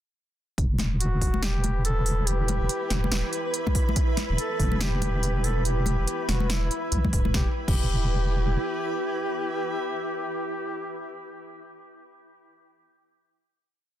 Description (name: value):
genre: deep dubstep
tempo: 142 BPM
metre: 4/4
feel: swing 60% on 16ths, half-time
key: E minor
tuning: A4 = 440 Hz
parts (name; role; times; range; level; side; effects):
- granular cloud pad; sustained chords; 1.7-10.6 s; E4 to B4; -33 LUFS; right 1 dB; built-in reverb
- deep soft wobble bass; bass; 0.6-8.6 s; D1 to B1; -25 LUFS; equal; chorus
- deep house drum kit; drums; 0.6-7.8 s; crash cymbal, hi-hat, snare drum; -31 LUFS; equal; none
- electronic kick drum; drums; 0.6-7.8 s; none; -25 LUFS; equal; none
- wind-like tuned noise texture; texture; 1.1-7.3 s; B4; -36 LUFS; right 2 dB; built-in reverb
- congas; percussion; 0.8-7.3 s; none; -33 LUFS; left 4 dB; none
- warm duduk; melody; 1.0-10.9 s; E4 to A4; -33 LUFS; left 2 dB; dub echo
room: light reverb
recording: dense, heavily limited modern master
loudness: -24 LUFS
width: side -12 dB against mid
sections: 0.6-7.3 drop; 7.3-10.7 final chord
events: drop 0.6-7.3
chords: 0.6 Em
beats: | 0.58 1.00 1.43 1.85 | 2.27 2.69 3.12 3.54 | 3.96 4.38 4.81 5.23 | 5.65 6.07 6.50 6.92 | 7.34 7.76 8.19 8.61 | 9.03 9.45 9.88 10.30